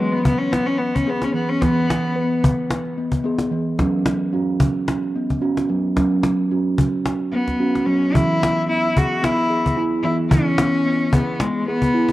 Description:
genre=world meditative, meditative tuned percussion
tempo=110 BPM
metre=4/4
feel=straight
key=E major pentatonic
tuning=A4 = 440 Hz
part: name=bright cello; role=melody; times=0.0-2.4, 7.3-12.1 s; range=G#3 to F#4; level=-21 LUFS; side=left 1 dB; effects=cassette tape, analog delay
part: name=steel tongue drum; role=arpeggios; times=0.0-12.1 s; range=E3 to B4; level=-20 LUFS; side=right 1 dB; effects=cassette tape, analog delay
part: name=cajon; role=percussion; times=0.3-12.1 s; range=none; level=-20 LUFS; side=left 1 dB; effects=none
room=moderate spring reverb, RT60 1.4 s, small room ambience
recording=home recording on cassette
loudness=-17 LUFS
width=side -16 dB against mid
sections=0.0-8.1 A section; 8.1-12.1 B section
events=none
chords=0.0 E; 3.8 F#5; 8.1 E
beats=0.52 1.06 | 1.61 2.15 2.70 3.25 | 3.79 4.34 4.88 5.43 | 5.97 6.52 7.06 7.61 | 8.15 8.69 9.24 9.78 | 10.32 10.86 11.41 11.95

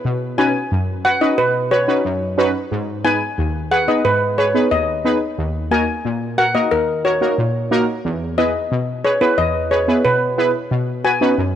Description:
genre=dancehall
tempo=90 BPM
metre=4/4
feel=straight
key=G# minor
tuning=A4 = 443 Hz
part: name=synth brass stab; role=accompaniment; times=0.0-11.6 s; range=D#2 to B4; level=-18 LUFS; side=equal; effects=chorus
part: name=steel pan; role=melody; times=0.4-11.2 s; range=A#4 to G#5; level=-19 LUFS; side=left 1 dB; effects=analog delay
room=light reverb, small room ambience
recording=dry, gritty hardware recording, cassette tape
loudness=-16 LUFS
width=side -10 dB against mid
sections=0.0-10.7 A section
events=none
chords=0.0 Badd9; 2.7 G#m; 5.4 D#m; 8.0 E; 10.7 Badd9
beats=| 0.05 0.71 1.38 2.05 | 2.71 3.38 4.05 4.71 | 5.38 6.05 6.71 7.38 | 8.05 8.71 9.38 10.05 | 10.71 11.38

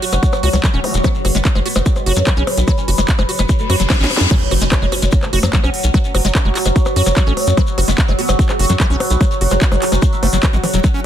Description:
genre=psychedelic trance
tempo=147 BPM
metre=4/4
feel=straight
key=unclear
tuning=A4 = 441 Hz
part: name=oud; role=melody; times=0.0-11.0 s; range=C#3 to F#4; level=-24 LUFS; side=right 1 dB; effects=phaser, sidechain pumping, tape echo
part: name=overtone-sweeping drone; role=sustained chords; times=0.0-11.1 s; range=F#3 to B4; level=-23 LUFS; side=equal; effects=chorus, built-in reverb, sidechain pumping
part: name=liquid acid bass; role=riff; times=0.0-11.0 s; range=E3 to F#4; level=-22 LUFS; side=equal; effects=chorus, auto-pan, sidechain pumping, dub echo
part: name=techno drum kit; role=drums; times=0.0-10.9 s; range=crash cymbal, handclaps, hi-hat, percussion blips, snare drum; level=-21 LUFS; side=left 1 dB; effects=none
part: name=tight sequencer bass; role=bass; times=0.1-10.8 s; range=E1 to F#2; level=-16 LUFS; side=equal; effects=none
part: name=shekere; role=percussion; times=0.1-11.0 s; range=none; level=-29 LUFS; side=left 4 dB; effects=none
part: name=electronic kick drum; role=drums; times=0.2-10.9 s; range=none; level=-15 LUFS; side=equal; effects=none
part: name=zap, reverse cymbal and impact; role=sound effects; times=0.8-0.9, 3.6-5.9 s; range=none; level=-24 LUFS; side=left 1 dB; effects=none
room=little or no reverb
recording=dense, heavily limited modern master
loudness=-12 LUFS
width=side -10 dB against mid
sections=0.0-4.3 A section; 4.3-11.1 B section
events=reverse cymbal 3.6-4.3; drum fill 3.9-4.3; band accent 4.2; drop 4.3-11.1; impact 4.3-5.9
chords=0.0 F#5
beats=0.23 0.64 | 1.04 1.45 1.86 2.27 | 2.68 3.08 3.49 3.90 | 4.31 4.72 5.12 5.53 | 5.94 6.35 6.76 7.17 | 7.57 7.98 8.39 8.80 | 9.21 9.62 10.02 10.43 | 10.84

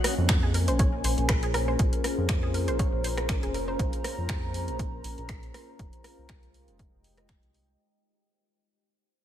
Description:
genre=deep house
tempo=120 BPM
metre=4/4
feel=swing 55% on 16ths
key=Bb minor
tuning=A4 = 440 Hz
part: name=deep dark ambient pad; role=sustained chords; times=0.0-7.8 s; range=Ab3 to C5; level=-36 LUFS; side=right 1 dB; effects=chorus, built-in reverb, sidechain pumping
part: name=deep house drum kit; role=drums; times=0.0-7.7 s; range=finger snaps, hi-hat, rim click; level=-32 LUFS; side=equal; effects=overdrive
part: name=warbly tape-like pad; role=texture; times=0.0-7.8 s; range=Ab3 to Bb5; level=-35 LUFS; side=left 2 dB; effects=chorus, built-in reverb, sidechain pumping
part: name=round analog bass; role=bass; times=0.2-7.8 s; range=F1 to F2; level=-30 LUFS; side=equal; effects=tube saturation
part: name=electronic kick drum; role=drums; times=0.3-7.4 s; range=none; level=-28 LUFS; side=equal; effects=overdrive
part: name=analog pluck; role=arpeggios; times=0.4-3.7 s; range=Ab4 to Db5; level=-37 LUFS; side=right 2 dB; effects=chorus, cassette tape, sidechain pumping, ping-pong delay
room=digital ambience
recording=none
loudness=-24 LUFS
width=side -11 dB against mid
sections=0.0-7.8 A section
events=fade-out 0.0-7.8; filter sweep on analog synth bass 0.0-7.8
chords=0.0 Bbm9; 5.5 Fm9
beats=0.29 0.79 1.29 | 1.79 2.29 2.79 3.29 | 3.79 4.29 4.79 5.29 | 5.79 6.29 6.79 7.29

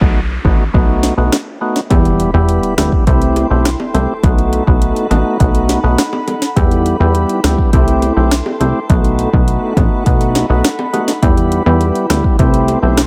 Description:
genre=dancehall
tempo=103 BPM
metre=4/4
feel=straight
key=unclear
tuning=A4 = 439 Hz
part: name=percussive tonewheel organ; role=accompaniment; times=0.0-13.0 s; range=G3 to G4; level=-19 LUFS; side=equal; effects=overdrive, sidechain pumping
part: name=plucky analog bass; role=bass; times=0.0-13.1 s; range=A1 to E2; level=-17 LUFS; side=equal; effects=none
part: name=afro-pop drum kit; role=drums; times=0.0-13.1 s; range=hi-hat, kick drum, rim click, snare drum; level=-16 LUFS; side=equal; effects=none
part: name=noise sweep and impact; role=sound effects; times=0.0-4.2 s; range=none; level=-29 LUFS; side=equal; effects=none
part: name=glassy FM pad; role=sustained chords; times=2.1-13.1 s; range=D#4 to C6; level=-25 LUFS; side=equal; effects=ensemble chorus, built-in reverb, sidechain pumping
part: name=bongos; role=percussion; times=2.8-12.8 s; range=none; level=-25 LUFS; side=equal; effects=none
room=little or no reverb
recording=none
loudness=-13 LUFS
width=mono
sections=0.0-1.9 A section; 1.9-13.1 B section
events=noise sweep 0.0-1.9; impact 1.9-4.2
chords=0.0 B7; 1.9 Em; 3.1 C6; 4.2 B7; 6.6 Em; 7.7 C6; 8.9 B7; 11.2 Em; 12.4 C6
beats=0.16 0.74 1.32 | 1.91 2.49 3.07 3.65 | 4.24 4.82 5.40 5.98 | 6.57 7.15 7.73 8.31 | 8.90 9.48 10.06 10.64 | 11.23 11.81 12.39 12.97

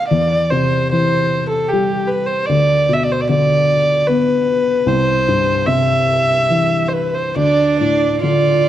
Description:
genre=celtic folk, Celtic slow air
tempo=74 BPM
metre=3/4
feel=uneven beats, rubato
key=unclear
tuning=A4 = 440 Hz
part: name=dark fiddle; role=melody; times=0.0-8.7 s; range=G4 to E5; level=-16 LUFS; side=right 1 dB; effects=none
part: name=dark upright piano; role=accompaniment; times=0.0-8.7 s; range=C2 to F4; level=-17 LUFS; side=left 2 dB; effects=none
part: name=clear cello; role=second line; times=7.4-8.7 s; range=D4 to F4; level=-18 LUFS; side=right 4 dB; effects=none
room=moderate recital hall reverb, RT60 1.5 s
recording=dark, warm production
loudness=-13 LUFS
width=side -11 dB against mid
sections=0.0-8.7 A section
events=none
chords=0.1 C/E; 2.5 Cmaj7sus2/D (rootless); 4.9 C; 7.4 Dm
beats=| 0.10 0.91 1.70 | 2.48 3.28 4.08 | 4.88 5.68 6.51 | 7.37 8.23

